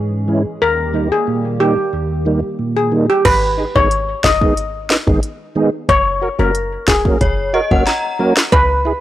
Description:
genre	dancehall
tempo	91 BPM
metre	4/4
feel	straight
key	G# minor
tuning	A4 = 440 Hz
part	tonewheel organ	accompaniment	0.0-8.9 s	D#2 to B4	-18 LUFS	right 2 dB	chorus vibrato, slow rotary speaker, low-pass filter
part	hollow soft pad	sustained chords	0.0-3.2 s	D#3 to G#4	-25 LUFS	equal	chorus, phaser, sidechain pumping, low-pass filter
part	steel pan	melody	0.6-8.7 s	G4 to D#5	-16 LUFS	left 1 dB	low-pass filter, analog delay
part	short 808-style bass	bass	3.3-8.9 s	E1 to C#2	-20 LUFS	equal	none
part	afro-pop drum kit	drums	3.3-8.7 s	crash cymbal, hi-hat, kick drum, snare drum	-16 LUFS	equal	none
part	synth chime	second line	7.2-8.3 s	C#5 to A#5	-19 LUFS	left 1 dB	ensemble chorus, analog delay
room	little or no reverb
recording	dry, gritty hardware recording, transformer saturation, cassette tape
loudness	-13 LUFS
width	side -13 dB against mid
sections	0.0-3.3 A section; 3.3-9.0 B section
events	none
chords	0.0 C#m; 0.6 D#; 3.3 G#m; 5.9 F#

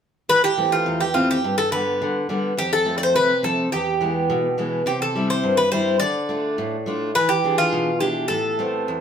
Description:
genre	greek folk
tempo	105 BPM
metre	2/4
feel	straight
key	A minor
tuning	A4 = 439 Hz
part	Greek bouzouki	melody	0.3-9.0 s	F4 to D5	-20 LUFS	equal	none
part	picked steel-string acoustic guitar	accompaniment	0.3-9.0 s	E2 to G#4	-23 LUFS	equal	none
room	wet studio reverb, RT60 0.6 s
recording	band playing live in one room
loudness	-18 LUFS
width	side -7 dB against mid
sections	0.3-9.0 A section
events	none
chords	0.3 Am; 1.4 G; 2.6 F; 3.7 E; 4.9 C; 6.0 Dm; 7.2 E7; 8.3 Amadd9

